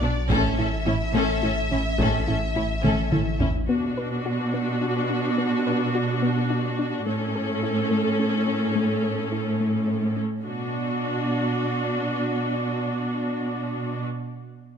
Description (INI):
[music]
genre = cinematic, hybrid orchestral and electronic film score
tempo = 71 BPM (dotted quarters)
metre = 6/8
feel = straight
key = B minor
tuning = A4 = 436 Hz
[part]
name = rich symphonic violin section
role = melody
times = 0.0-3.5 s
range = D5 to E5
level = -30 LUFS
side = left 2 dB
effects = none
[part]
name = rich studio violin section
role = second line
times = 0.0-3.5 s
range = D4 to A4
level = -31 LUFS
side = left 4 dB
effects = none
[part]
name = rich symphonic viola section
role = accompaniment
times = 0.0-14.1 s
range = C#4 to A4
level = -28 LUFS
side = equal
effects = none
[part]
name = soft round pluck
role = arpeggios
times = 0.0-10.3 s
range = A3 to B4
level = -30 LUFS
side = left 4 dB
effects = chorus, ping-pong delay
[part]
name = rich studio cello section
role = bass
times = 0.0-14.1 s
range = A2 to B2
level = -26 LUFS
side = right 2 dB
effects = none
[part]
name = warm sub bass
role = bass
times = 0.0-3.7 s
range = A1 to B1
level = -29 LUFS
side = left 1 dB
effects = none
[part]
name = warm symphonic double bass section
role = bass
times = 0.0-3.5 s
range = A1 to B1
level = -30 LUFS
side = right 4 dB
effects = none
[part]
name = taiko ensemble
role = drums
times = 0.3-3.7 s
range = none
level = -28 LUFS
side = equal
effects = none
[sound]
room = moderate scoring stage reverb, RT60 1.8 s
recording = none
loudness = -22 LUFS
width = side -7 dB against mid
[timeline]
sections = 0.0-3.7 A section; 3.7-10.4 B section; 10.4-13.8 C section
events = drum fill 2.8-3.7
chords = 0.3 A; 3.7 Bm; 7.1 A; 10.4 Bm